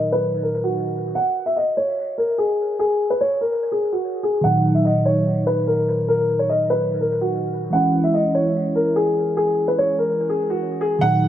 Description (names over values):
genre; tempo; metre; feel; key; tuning
hip hop; 146 BPM; 4/4; half-time; unclear; A4 = 440 Hz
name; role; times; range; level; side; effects
dark grand piano; melody; 0.0-11.3 s; Gb4 to Gb5; -19 LUFS; equal; low-pass filter, dub echo
mellow tine electric piano; accompaniment; 0.0-1.2, 4.4-11.3 s; Bb2 to Fb4; -22 LUFS; right 1 dB; phaser, low-pass filter
room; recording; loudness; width
moderate spring reverb, RT60 2.2 s; echo-heavy mix; -18 LUFS; side -11 dB against mid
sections
0.0-11.3 A section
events
filter sweep 0.0-11.0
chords
0.0 Ebm; 1.2 N.C.; 4.4 Ebm; 7.7 Dbm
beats
0.33 0.74 | 1.15 1.56 1.97 2.38 | 2.80 3.21 3.62 4.03 | 4.44 4.85 5.26 5.67 | 6.08 6.49 6.91 7.32 | 7.73 8.14 8.55 8.96 | 9.37 9.78 10.19 10.60 | 11.02